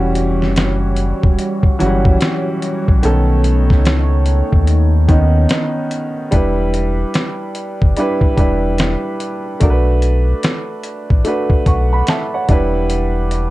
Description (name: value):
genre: lo-fi hip hop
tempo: 73 BPM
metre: 4/4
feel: swing 61% on 16ths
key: E dorian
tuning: A4 = 439 Hz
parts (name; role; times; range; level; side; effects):
- warm upright piano; accompaniment; 0.0-13.5 s; D#3 to C#6; -18 LUFS; right 1 dB; low-pass filter
- warbly tape-like pad; sustained chords; 0.0-6.3 s; G3 to C#5; -24 LUFS; right 1 dB; chorus, built-in reverb, low-pass filter
- sub bass with octave; bass; 0.0-13.5 s; E1 to D#2; -15 LUFS; equal; none
- dusty soul sampler-style drum kit; drums; 0.2-13.5 s; hi-hat, kick drum, snare drum; -15 LUFS; equal; none
room: light reverb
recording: dark, warm production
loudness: -13 LUFS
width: side -17 dB against mid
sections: 0.0-6.3 A section; 6.3-13.5 B section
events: none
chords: 0.0 Em69; 3.0 B9; 6.3 Em7; 9.6 Bm7; 12.5 Em7